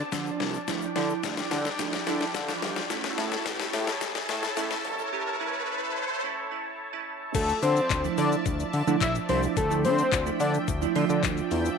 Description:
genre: dance-pop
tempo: 108 BPM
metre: 4/4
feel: straight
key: D minor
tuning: A4 = 440 Hz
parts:
  - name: filtered supersaw swell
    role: sustained chords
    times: 0.0-11.8 s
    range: F3 to A5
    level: -34 LUFS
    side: equal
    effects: sidechain pumping
  - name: fat analog bass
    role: bass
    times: 0.0-11.7 s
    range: G1 to D3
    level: -29 LUFS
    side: left 2 dB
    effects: sidechain pumping
  - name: riser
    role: sound effects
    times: 0.0-6.2 s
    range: none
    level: -35 LUFS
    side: equal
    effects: none
  - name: glassy digital keys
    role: accompaniment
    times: 0.1-11.8 s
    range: E3 to A5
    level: -31 LUFS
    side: right 14 dB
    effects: chorus, sidechain pumping
  - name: smooth R&B drum kit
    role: drums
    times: 0.1-11.8 s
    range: crash cymbal, handclaps, hi-hat, kick drum, shaker, snare drum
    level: -31 LUFS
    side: left 6 dB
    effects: none
  - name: tube shaker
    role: percussion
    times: 0.1-11.8 s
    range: none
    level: -45 LUFS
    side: left 21 dB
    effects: none
  - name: fat analog lead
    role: melody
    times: 7.3-10.5 s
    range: A4 to E5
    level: -28 LUFS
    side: left 3 dB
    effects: tape echo
room: light reverb, digital ambience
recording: 1960s-style stereo with parts hard left and right, high-pass filter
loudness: -25 LUFS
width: side -6 dB against mid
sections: 0.0-7.3 A section; 7.3-11.8 B section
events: build-up 0.0-7.3; drum fill 0.0-5.1; riser 0.0-7.3; synth keys fill 1.8-2.9; break 5.1-7.3; drop 7.3-11.8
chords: 0.0 Dmadd9; 2.9 A; 7.3 Dmadd9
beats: 0.12 | 0.68 1.24 1.79 2.35 | 2.90 3.46 4.01 4.57 | 5.12 5.68 6.24 6.79 | 7.35 7.90 8.46 9.01 | 9.57 10.12 10.68 11.24

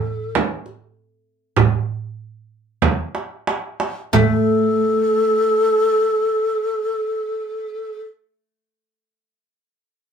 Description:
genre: Arabic maqam ensemble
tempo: free time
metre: none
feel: none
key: unclear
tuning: A4 = 439 Hz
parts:
  - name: oud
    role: melody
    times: 0.0-8.0 s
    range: A3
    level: -20 LUFS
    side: left 2 dB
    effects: none
  - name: breathy mellow low ney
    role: second line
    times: 0.0-8.0 s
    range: A4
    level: -18 LUFS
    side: left 1 dB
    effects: none
  - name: darbuka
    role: percussion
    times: 0.4-4.8 s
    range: none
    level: -21 LUFS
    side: right 6 dB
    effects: none
  - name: frame drum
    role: percussion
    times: 0.4-4.8 s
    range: none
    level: -20 LUFS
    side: right 5 dB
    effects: none
room: wet studio reverb, RT60 0.5 s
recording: heard from further back in the room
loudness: -17 LUFS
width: side -7 dB against mid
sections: 0.0-4.1 A section; 4.1-10.1 B section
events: slowing down 0.0-4.1; drum fill 2.8-4.1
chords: none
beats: free time

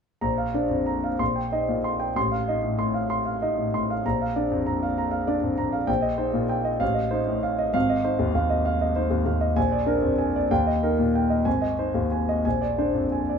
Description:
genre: classical, romantic character piece for solo piano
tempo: 57-67 BPM (dotted quarters)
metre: 6/8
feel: rubato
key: Bb major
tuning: A4 = 440 Hz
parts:
  - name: warm concert grand piano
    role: solo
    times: 0.2-13.4 s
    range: Ab1 to C6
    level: -22 LUFS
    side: equal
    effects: none
room: moderate studio reverb, RT60 0.5 s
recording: minimal, uncompressed stereo recording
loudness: -22 LUFS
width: side -6 dB against mid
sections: 0.2-13.4 A section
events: none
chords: 0.2 Bb; 1.2 Cm7/Bb; 2.2 F7/A; 4.0 Bb; 5.9 Cm7/Bb; 6.8 F7/A; 7.7 Fm7/Ab; 9.6 Bb7; 10.5 Eb; 11.5 Ab; 12.4 Bb9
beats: | 0.22 1.21 | 2.16 3.11 | 4.04 4.97 | 5.88 6.81 | 7.75 8.65 | 9.57 10.50 | 11.46 12.45

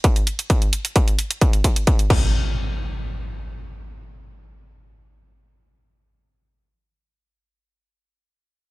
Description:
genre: driving peak-time techno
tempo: 131 BPM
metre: 4/4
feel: straight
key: none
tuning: none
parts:
  - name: electronic kick drum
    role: drums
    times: 0.0-2.2 s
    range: none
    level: -17 LUFS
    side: equal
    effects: distortion, overdrive
  - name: techno drum kit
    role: drums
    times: 0.0-2.2 s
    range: crash cymbal, hi-hat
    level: -26 LUFS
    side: right 1 dB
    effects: overdrive, sidechain pumping on hats, sidechain pumping on cymbals
  - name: impact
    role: sound effects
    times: 2.1-6.6 s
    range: none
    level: -26 LUFS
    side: equal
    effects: none
room: digital ambience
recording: bright 1980s-style digital production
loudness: -18 LUFS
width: side -21 dB against mid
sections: 0.0-2.3 A section; 2.3-6.0 B section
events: none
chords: none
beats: 0.04 | 0.50 0.96 1.42 1.87 | 2.33 2.79 3.25 3.71 | 4.16 4.62 5.08 5.54

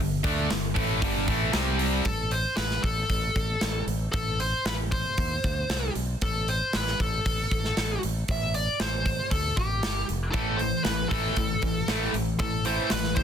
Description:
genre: hard rock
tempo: 116 BPM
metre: 4/4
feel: straight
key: A minor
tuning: A4 = 440 Hz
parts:
  - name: cranked stack guitar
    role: riff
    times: 0.0-2.1, 10.3-13.2 s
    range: G2 to D4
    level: -30 LUFS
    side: right 13 dB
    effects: overdrive
  - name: overdriven electric guitar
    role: riff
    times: 0.0-2.1, 10.3-13.2 s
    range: G2 to D4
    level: -30 LUFS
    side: left 16 dB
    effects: none
  - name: modern bright fingered electric bass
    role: bass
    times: 0.0-13.2 s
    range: F1 to Eb2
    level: -30 LUFS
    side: equal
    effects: none
  - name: tight metal drum kit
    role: drums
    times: 0.2-13.2 s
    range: hi-hat, kick drum, snare drum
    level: -29 LUFS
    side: equal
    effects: none
  - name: high-gain lead guitar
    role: melody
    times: 2.1-13.2 s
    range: G4 to E5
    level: -29 LUFS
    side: left 1 dB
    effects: distortion
room: little or no reverb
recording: dense, heavily limited modern master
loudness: -24 LUFS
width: side -8 dB against mid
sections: 0.0-2.1 A section; 2.1-13.2 B section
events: none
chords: 0.0 G5; 1.5 C5; 2.1 Am; 5.2 Cmadd9; 5.7 N.C.; 6.2 Am; 9.3 D5; 9.8 Fsus2; 10.3 A5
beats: 0.51 1.03 1.54 | 2.06 2.58 3.10 3.62 | 4.14 4.66 5.18 5.70 | 6.21 6.73 7.25 7.77 | 8.28 8.80 9.31 9.83 | 10.35 10.86 11.37 11.89 | 12.40 12.92

